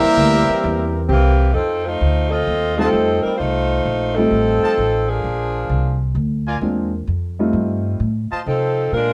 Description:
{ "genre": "jazz, big band swing", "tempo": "130 BPM", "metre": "4/4", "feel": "swing 68% on 8ths", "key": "F major", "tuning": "A4 = 440 Hz", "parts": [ { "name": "brilliant trumpet section", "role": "melody", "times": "0.0-1.1 s", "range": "C4 to E5", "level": "-20 LUFS", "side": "equal", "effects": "none" }, { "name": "warm trombone section", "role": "second line", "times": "0.0-1.0 s", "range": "G3 to E4", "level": "-22 LUFS", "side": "equal", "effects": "none" }, { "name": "muted trombone section", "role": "sustained chords", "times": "0.0-1.5 s", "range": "E3 to G4", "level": "-28 LUFS", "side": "equal", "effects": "none" }, { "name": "upright bass", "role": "bass", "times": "0.0-9.1 s", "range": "A1 to C3", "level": "-22 LUFS", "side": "equal", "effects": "none" }, { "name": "warm saxophone section", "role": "melody", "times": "1.1-9.1 s", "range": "E3 to Eb5", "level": "-20 LUFS", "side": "equal", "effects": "none" }, { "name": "warm grand piano", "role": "accompaniment", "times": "2.8-8.0 s", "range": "G3 to F4", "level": "-23 LUFS", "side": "equal", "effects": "none" }, { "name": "clear trumpet section", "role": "stabs", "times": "2.8-8.4 s", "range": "F4 to A5", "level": "-29 LUFS", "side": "equal", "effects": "none" } ], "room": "moderate club reverb, RT60 0.8 s", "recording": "dark, warm production", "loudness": "-18 LUFS", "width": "mono", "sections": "0.0-1.6 A section; 1.6-9.1 B section", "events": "none", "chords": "0.0 C7; 1.6 F7; 5.2 Bb7; 7.1 F7" }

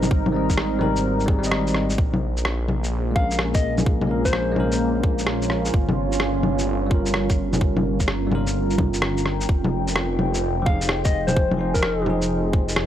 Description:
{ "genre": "future garage", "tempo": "128 BPM", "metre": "4/4", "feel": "swing 66% on 16ths", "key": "F minor", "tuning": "A4 = 440 Hz", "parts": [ { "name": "bell-like tine electric piano", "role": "accompaniment", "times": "0.0-12.9 s", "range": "F3 to Eb5", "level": "-28 LUFS", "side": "left 1 dB", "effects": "sidechain pumping, analog delay" }, { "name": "deep dark ambient pad", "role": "sustained chords", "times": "0.0-12.9 s", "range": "G3 to Ab5", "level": "-26 LUFS", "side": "right 1 dB", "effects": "chorus, built-in reverb, sidechain pumping" }, { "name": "swelling detuned saw bass", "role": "bass", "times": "0.0-12.9 s", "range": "F1 to Bb1", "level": "-26 LUFS", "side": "equal", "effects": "tube saturation, sidechain pumping" }, { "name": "electronic bongos, shaker and rim click", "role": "drums", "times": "0.0-12.9 s", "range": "none", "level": "-25 LUFS", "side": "left 1 dB", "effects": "small room ambience" }, { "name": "electronic kick drum", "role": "drums", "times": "0.1-12.7 s", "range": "none", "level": "-20 LUFS", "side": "equal", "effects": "overdrive, small room ambience" }, { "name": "soft struck synth lead", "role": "melody", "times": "3.2-4.9, 10.7-12.1 s", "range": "Bb4 to F5", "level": "-27 LUFS", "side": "left 3 dB", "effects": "chorus, tape echo" } ], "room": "light reverb", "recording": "dry, gritty hardware recording, transformer saturation", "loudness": "-19 LUFS", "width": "side -11 dB against mid", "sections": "0.0-12.9 A section", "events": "none", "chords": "0.0 Abmaj9; 2.0 Bbm7; 5.7 Gm7b5; 9.5 Fm7" }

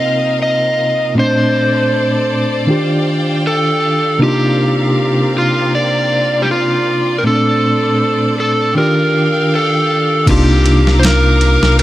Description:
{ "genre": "trip hop", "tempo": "79 BPM", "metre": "4/4", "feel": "swing 53% on 16ths", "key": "C dorian", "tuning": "A4 = 441 Hz", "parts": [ { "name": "overdriven slide guitar", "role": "melody", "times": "0.0-11.8 s", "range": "F4 to Eb5", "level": "-15 LUFS", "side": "equal", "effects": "vintage 12-bit sampler grit, tape echo" }, { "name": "tine electric piano", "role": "accompaniment", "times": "0.0-11.8 s", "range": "Bb2 to G4", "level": "-15 LUFS", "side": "equal", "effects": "medium tremolo, harmonic tremolo" }, { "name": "bright symphonic violin section", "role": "sustained chords", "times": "0.0-11.8 s", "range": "C4 to D6", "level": "-22 LUFS", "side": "left 1 dB", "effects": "vintage 12-bit sampler grit" }, { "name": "warm sub bass", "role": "bass", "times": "10.3-11.8 s", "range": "C2", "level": "-12 LUFS", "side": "equal", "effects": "tube saturation" }, { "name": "dusty soul sampler-style drum kit", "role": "drums", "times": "10.3-11.8 s", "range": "crash cymbal, kick drum, ride cymbal, snare drum", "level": "-17 LUFS", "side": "equal", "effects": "small room ambience" } ], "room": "light reverb, digital ambience", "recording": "none", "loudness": "-11 LUFS", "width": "side -15 dB against mid", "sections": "0.0-10.3 A section; 10.3-11.8 B section", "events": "none", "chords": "0.0 Cm7; 1.2 Bbmaj9; 2.7 Ebmaj9; 4.2 Cm11; 7.2 Bbmaj9; 8.8 Ebmaj9; 10.3 Cm11" }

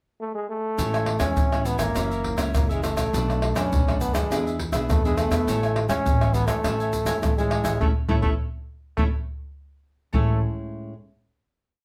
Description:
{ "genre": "samba and choro", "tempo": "103 BPM", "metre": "4/4", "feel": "straight", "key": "A major", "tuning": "A4 = 440 Hz", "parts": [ { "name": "bright trombone", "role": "melody", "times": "0.2-10.4 s", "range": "G#3 to C#4", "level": "-29 LUFS", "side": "equal", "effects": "none" }, { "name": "cavaquinho", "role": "accompaniment", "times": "0.8-10.4 s", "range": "D4 to G#5", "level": "-37 LUFS", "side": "equal", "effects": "none" }, { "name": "nylon-string guitar", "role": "accompaniment", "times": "0.8-10.9 s", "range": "F#2 to G#4", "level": "-32 LUFS", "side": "equal", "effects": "none" }, { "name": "upright bass", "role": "bass", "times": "0.8-10.4 s", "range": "F#1 to F#2", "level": "-30 LUFS", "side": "equal", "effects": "none" }, { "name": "egg shaker, surdo, pandeiro and tamborim", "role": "percussion", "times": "0.8-10.3 s", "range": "none", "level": "-27 LUFS", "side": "equal", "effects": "none" } ], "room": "moderate studio reverb, RT60 0.6 s", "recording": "heard from further back in the room", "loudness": "-24 LUFS", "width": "mono", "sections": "0.0-0.8 pickup bar; 0.8-10.1 A section; 10.1-11.8 final chord", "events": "band accent 7.8-10.1", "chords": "0.0 N.C.; 0.8 Amaj7; 2.0 F#7; 3.1 Bm7; 4.3 E7; 5.5 Amaj7" }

